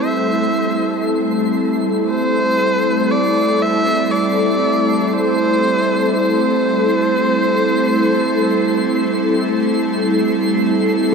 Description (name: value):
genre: ambient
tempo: free time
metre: none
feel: none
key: A minor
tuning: A4 = 435 Hz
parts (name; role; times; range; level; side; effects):
- dark electric violin; melody; 0.0-9.7 s; C5 to E5; -19 LUFS; equal; tape echo
- airy breathy pad; sustained chords; 0.0-11.1 s; G3 to A4; -16 LUFS; equal; chorus
- twinkling granular texture; texture; 0.0-11.1 s; C7; -31 LUFS; right 1 dB; built-in reverb
room: wet huge ambient reverb, RT60 7.8 s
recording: none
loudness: -14 LUFS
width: side -5 dB against mid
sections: 0.0-11.1 A section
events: fade-in on synth texture 0.0-11.1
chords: 0.0 Am7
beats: free time